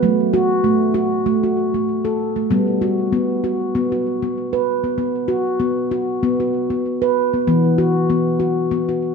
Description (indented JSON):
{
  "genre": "world meditative, meditative tuned percussion",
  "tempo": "97 BPM",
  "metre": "4/4",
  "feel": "swing 54% on 16ths",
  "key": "unclear",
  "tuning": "A4 = 439 Hz",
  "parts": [
    { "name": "handpan", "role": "solo", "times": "0.0-9.1 s", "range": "E3 to B4", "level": "-16 LUFS", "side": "equal", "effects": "ping-pong delay" }
  ],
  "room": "wet echo chamber reverb, RT60 1.6 s, small room ambience",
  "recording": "dark, warm production",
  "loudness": "-16 LUFS",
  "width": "side -5 dB against mid",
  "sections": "0.0-9.1 A section",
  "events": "none",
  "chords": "0.0 F#m; 2.5 G; 5.0 B5; 7.5 E5",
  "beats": "| 0.03 0.65 1.27 1.89 | 2.51 3.13 3.75 4.37 | 4.99 5.61 6.23 6.85 | 7.47 8.10 8.72"
}